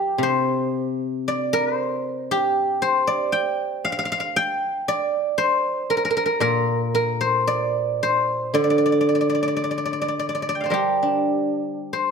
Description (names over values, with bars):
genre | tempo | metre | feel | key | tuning
chinese traditional, Chinese solo plucked strings | 57 BPM | 4/4 | rubato | G yu mode | A4 = 440 Hz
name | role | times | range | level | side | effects
guzheng | solo | 0.0-12.1 s | Bb2 to G5 | -20 LUFS | equal | none
room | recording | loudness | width
moderate recital hall reverb, RT60 1.5 s | close, detailed microphones | -20 LUFS | side -6 dB against mid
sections
0.0-12.1 A section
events
none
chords
none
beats
| 0.20 1.26 2.29 3.33 | 4.36 5.39 6.43 7.49 | 8.56 9.63 10.73 11.90